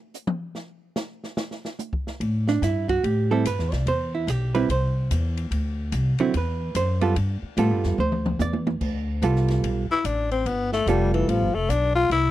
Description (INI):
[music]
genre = jazz, small-group swing and bop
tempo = 146 BPM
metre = 4/4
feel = swing 64% on 8ths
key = G mixolydian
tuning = A4 = 438 Hz
[part]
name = open jazz drum kit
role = drums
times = 0.1-12.2 s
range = crash cymbal, hi-hat, kick drum, ride cymbal, snare drum, toms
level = -33 LUFS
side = equal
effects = none
[part]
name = upright bass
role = bass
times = 2.2-12.3 s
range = F1 to A2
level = -24 LUFS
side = left 1 dB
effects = none
[part]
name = hollow-body jazz guitar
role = accompaniment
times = 2.5-11.5 s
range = D3 to D5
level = -24 LUFS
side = right 5 dB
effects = none
[part]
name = growling tenor saxophone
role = melody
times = 9.9-12.3 s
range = E3 to F4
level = -22 LUFS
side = left 4 dB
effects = none
[sound]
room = little or no reverb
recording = dry, close 1970s-style studio recording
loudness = -22 LUFS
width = side -14 dB against mid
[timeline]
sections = 0.0-8.8 A section; 8.8-12.3 B section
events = drum solo 0.0-2.2; drum fill 8.0-8.8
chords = 0.0 N.C.; 2.2 Am7; 5.5 D9; 7.2 G9; 8.0 Dsus2; 8.8 G9